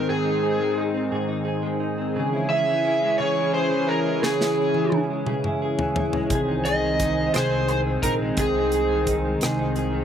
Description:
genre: six-eight pop ballad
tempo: 58 BPM (dotted quarters)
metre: 6/8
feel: straight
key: Ab major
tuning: A4 = 440 Hz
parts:
  - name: lead guitar through a small cranked amp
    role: melody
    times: 0.0-9.1 s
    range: Ab4 to Fb5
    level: -23 LUFS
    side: right 1 dB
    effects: overdrive, slapback echo
  - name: direct-recorded clean electric guitar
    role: accompaniment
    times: 0.0-10.0 s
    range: Ab2 to Ab4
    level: -27 LUFS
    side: left 1 dB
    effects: double-tracked left and right, slapback echo
  - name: lush unison pad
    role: sustained chords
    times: 0.0-10.0 s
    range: Eb3 to Ab4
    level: -26 LUFS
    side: equal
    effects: chorus
  - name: modern studio drum kit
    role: drums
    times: 4.2-9.9 s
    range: hi-hat, kick drum, rim click, snare drum, toms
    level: -28 LUFS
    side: equal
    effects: none
  - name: upright bass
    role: bass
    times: 6.3-10.0 s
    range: Bb1 to C2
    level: -28 LUFS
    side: equal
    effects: none
room: little or no reverb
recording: recorded outdoors, with no room sound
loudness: -20 LUFS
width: side -8 dB against mid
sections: 0.0-10.0 A section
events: drum fill 4.2-6.3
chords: 0.0 Ab; 2.1 Dbm; 6.3 Ab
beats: | 0.07 1.11 | 2.15 3.18 | 4.22 5.26 | 6.30 7.34 | 8.38 9.42

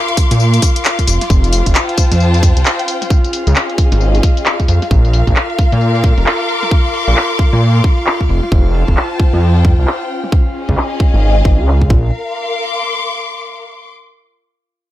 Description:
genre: UK garage, two-step garage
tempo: 133 BPM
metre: 4/4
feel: swing 62% on 16ths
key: unclear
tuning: A4 = 435 Hz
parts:
  - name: airy breathy pad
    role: sustained chords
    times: 0.0-11.9 s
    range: F4 to F5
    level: -24 LUFS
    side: left 1 dB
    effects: chorus, sidechain pumping
  - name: dark symphonic string section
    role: texture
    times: 0.0-13.9 s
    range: Db4 to D6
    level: -20 LUFS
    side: left 3 dB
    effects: sidechain pumping
  - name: garage drum kit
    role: drums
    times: 0.1-11.9 s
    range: handclaps, hi-hat, snare drum, tambourine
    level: -18 LUFS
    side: left 1 dB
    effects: low-pass filter on hats, small room ambience, low-pass filter on perc, low-pass filter on snare, low-pass filter on cymbals
  - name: electronic kick drum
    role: drums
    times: 0.2-12.0 s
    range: none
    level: -12 LUFS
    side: equal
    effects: small room ambience
  - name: dark detuned saw bass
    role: bass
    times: 0.3-12.1 s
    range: F1 to Bb2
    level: -12 LUFS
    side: equal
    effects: sidechain pumping
room: digital ambience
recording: none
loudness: -11 LUFS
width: side -14 dB against mid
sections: 0.0-12.1 A section; 12.1-13.9 B section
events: filter sweep on drum 0.0-12.1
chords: 0.0 Bbadd9; 1.1 Fadd9; 2.9 Dbmaj9; 4.9 Bbadd9; 8.3 Fadd9; 10.1 Dbmaj9; 11.9 Bb5; 12.1 Bbadd9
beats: 0.40 0.85 | 1.30 1.75 2.20 2.65 | 3.11 3.56 4.01 4.46 | 4.91 5.36 5.81 6.26 | 6.71 7.17 7.62 8.07 | 8.52 8.97 9.42 9.87 | 10.32 10.78 11.23 11.68 | 12.13 12.58 13.03 13.48

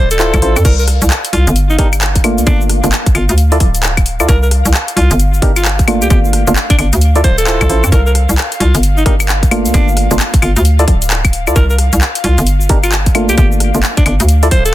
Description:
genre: UK garage, two-step garage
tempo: 132 BPM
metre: 4/4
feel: swing 62% on 16ths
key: unclear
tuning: A4 = 442 Hz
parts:
  - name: raspy alto saxophone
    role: melody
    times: 0.0-14.7 s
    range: D4 to C5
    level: -20 LUFS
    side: equal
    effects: ping-pong delay
  - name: airy breathy pad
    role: sustained chords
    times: 0.1-14.7 s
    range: D5 to F5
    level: -25 LUFS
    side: left 1 dB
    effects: chorus, sidechain pumping
  - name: hollow knocking FM bass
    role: bass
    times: 0.0-14.7 s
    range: D1 to F2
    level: -12 LUFS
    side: equal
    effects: sidechain pumping
  - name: garage drum kit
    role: drums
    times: 0.1-14.7 s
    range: claves, crash cymbal, handclaps, hi-hat, rim click, shaker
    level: -17 LUFS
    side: left 2 dB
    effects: none
  - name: percussive organ stab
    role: stabs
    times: 0.2-14.5 s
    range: A3 to D5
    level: -18 LUFS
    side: right 1 dB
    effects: chorus, cassette tape, ping-pong delay
  - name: electronic kick drum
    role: drums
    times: 0.3-14.6 s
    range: none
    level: -10 LUFS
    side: equal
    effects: none
room: little or no reverb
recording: dense, heavily limited modern master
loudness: -9 LUFS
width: side -14 dB against mid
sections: 0.0-14.7 A section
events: none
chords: 0.0 Dm9; 0.6 C7sus2; 2.5 Gm9; 3.4 Dmadd9; 4.3 C7sus2; 6.1 Gm9; 7.0 Dm9; 7.9 C7sus2; 9.7 Gm9; 10.6 Dmadd9; 11.6 C7sus2; 13.4 Gm9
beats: 0.20 | 0.65 1.10 1.56 2.01 | 2.47 2.92 3.38 3.83 | 4.29 4.74 5.20 5.65 | 6.10 6.56 7.01 7.47 | 7.92 8.38 8.83 9.29 | 9.74 10.20 10.65 11.10 | 11.56 12.01 12.47 12.92 | 13.38 13.83 14.29 14.74

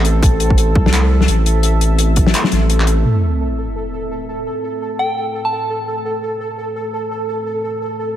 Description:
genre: half-time drum and bass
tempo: 170 BPM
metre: 4/4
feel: swing 58% on 16ths, half-time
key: A minor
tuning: A4 = 440 Hz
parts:
  - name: deep dark ambient pad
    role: sustained chords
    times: 0.0-8.2 s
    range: A3 to E5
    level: -26 LUFS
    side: right 1 dB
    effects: chorus, built-in reverb, sidechain pumping
  - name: saturated sub bass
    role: bass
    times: 0.0-3.0 s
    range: A1 to C2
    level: -14 LUFS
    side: equal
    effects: none
  - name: compact cocktail drum kit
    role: drums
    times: 0.0-3.0 s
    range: handclaps, hi-hat, snare drum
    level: -18 LUFS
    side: left 3 dB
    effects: low-pass filter on hats, low-pass filter on snare, low-pass filter on room
  - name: pulsing gated texture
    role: texture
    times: 0.0-8.2 s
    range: A4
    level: -23 LUFS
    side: right 1 dB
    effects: chorus, built-in reverb
  - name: electronic kick drum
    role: drums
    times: 0.2-2.2 s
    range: none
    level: -14 LUFS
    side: equal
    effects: none
  - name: sub drop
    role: sound effects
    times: 3.1-4.5 s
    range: none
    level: -20 LUFS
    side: equal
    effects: none
  - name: soft synth bell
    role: melody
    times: 5.0-5.7 s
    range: G5 to A5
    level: -23 LUFS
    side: right 1 dB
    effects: chorus, tape echo
room: light reverb, small room reverb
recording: none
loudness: -14 LUFS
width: side -11 dB against mid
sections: 0.0-3.1 A section; 3.1-8.2 B section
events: drop 0.0-3.1; kick drops out 2.7-3.1; impact 3.1-4.5; filter sweep on ambient pad 3.1-8.2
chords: 0.0 Am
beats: | 0.23 0.58 0.93 1.29 | 1.64 1.99 2.35 2.70 | 3.05 3.40 3.76 4.11 | 4.46 4.82 5.17 5.52 | 5.88 6.23 6.58 6.93 | 7.29 7.64 7.99

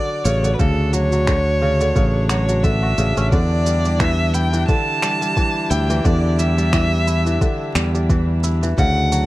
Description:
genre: folktronica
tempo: 88 BPM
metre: 4/4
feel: swing 56% on 16ths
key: E dorian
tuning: A4 = 440 Hz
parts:
  - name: rich violin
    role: melody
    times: 0.0-9.3 s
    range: A4 to A5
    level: -22 LUFS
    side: equal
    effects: digital delay, plate reverb
  - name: warm string quartet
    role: sustained chords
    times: 0.0-9.3 s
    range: E3 to D5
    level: -28 LUFS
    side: right 1 dB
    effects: plate reverb
  - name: kora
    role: arpeggios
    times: 0.0-9.3 s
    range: C#3 to F#4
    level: -24 LUFS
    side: left 1 dB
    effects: low-pass filter, digital delay, plate reverb
  - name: fingered electric bass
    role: bass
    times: 0.3-9.3 s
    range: A1 to E2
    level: -18 LUFS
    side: equal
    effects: none
  - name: electronic shaker and finger snaps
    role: drums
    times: 0.3-9.3 s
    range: none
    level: -27 LUFS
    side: right 1 dB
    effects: none
  - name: electronic kick drum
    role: drums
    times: 0.6-8.9 s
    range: none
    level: -19 LUFS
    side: equal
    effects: none
room: light reverb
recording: vinyl crackle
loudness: -15 LUFS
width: side -17 dB against mid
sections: 0.0-9.3 A section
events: none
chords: 0.0 Dmaj7; 3.3 Em7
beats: | 0.59 1.28 1.96 2.64 | 3.32 4.00 4.69 5.37 | 6.05 6.73 7.41 8.10 | 8.78

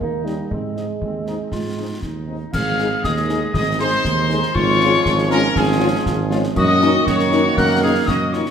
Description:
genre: military-style march for wind band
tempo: 119 BPM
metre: 2/4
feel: straight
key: Ab major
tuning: A4 = 444 Hz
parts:
  - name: warm euphonium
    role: second line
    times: 0.0-2.0 s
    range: G3 to Bb3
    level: -26 LUFS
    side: right 4 dB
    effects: none
  - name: warm woodwind section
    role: second line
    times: 0.0-8.4 s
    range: C4 to Bb4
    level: -25 LUFS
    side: left 3 dB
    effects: none
  - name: mellow tuba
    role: bass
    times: 0.0-8.5 s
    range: Ab1 to Ab2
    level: -21 LUFS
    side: right 3 dB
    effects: none
  - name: concert bass drum, concert snare drum and clash cymbals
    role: drums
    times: 0.0-8.5 s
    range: none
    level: -26 LUFS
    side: left 1 dB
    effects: none
  - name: mellow French horn section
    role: accompaniment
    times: 0.2-8.4 s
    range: G3 to Ab4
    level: -25 LUFS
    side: left 5 dB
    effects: none
  - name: dark trumpet section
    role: melody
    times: 0.3-8.4 s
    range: Ab4 to Gb5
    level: -22 LUFS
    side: left 1 dB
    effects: none
  - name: mellow piccolo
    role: second line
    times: 2.5-8.5 s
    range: Ab5 to Gb6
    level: -23 LUFS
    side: left 3 dB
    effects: none
  - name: warm trombone section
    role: sustained chords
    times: 2.5-8.5 s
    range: Eb3 to Bb3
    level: -25 LUFS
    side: right 4 dB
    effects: none
room: wet recital hall reverb, RT60 1.5 s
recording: none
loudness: -16 LUFS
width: side -7 dB against mid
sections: 0.0-2.5 A section; 2.5-8.5 B section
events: none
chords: 0.0 Eb7; 0.5 Ab; 4.6 Db/Ab; 6.6 Ebm7/Gb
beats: 0.01 | 0.51 1.02 | 1.52 2.03 | 2.53 3.04 | 3.54 4.05 | 4.55 5.06 | 5.56 6.07 | 6.57 7.07 | 7.58 8.08

